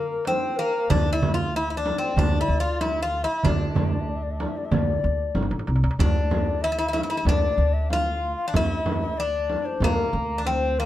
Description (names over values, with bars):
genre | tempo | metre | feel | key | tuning
Turkish makam ensemble | 94 BPM | 4/4 | straight | D makam ussak | A4 = 439 Hz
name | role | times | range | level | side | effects
Greek bouzouki | melody | 0.0-10.9 s | Bb3 to F4 | -27 LUFS | equal | plate reverb
breathy bright low ney | second line | 0.0-10.9 s | Bb4 to F5 | -28 LUFS | left 5 dB | slapback echo
darbuka | percussion | 0.3-6.0 s | none | -28 LUFS | right 4 dB | none
frame drum | percussion | 0.3-10.6 s | none | -28 LUFS | right 1 dB | none
upright bass | bass | 0.9-10.9 s | G1 to D2 | -25 LUFS | equal | none
room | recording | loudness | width
light reverb | dark, warm production | -21 LUFS | side -13 dB against mid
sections
0.0-6.0 A section; 6.0-10.9 A section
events
drum fill 5.4-6.0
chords
none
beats
0.26 | 0.90 1.54 2.17 2.81 | 3.44 4.08 4.72 5.35 | 5.99 6.63 7.26 7.90 | 8.54 9.17 9.81 10.45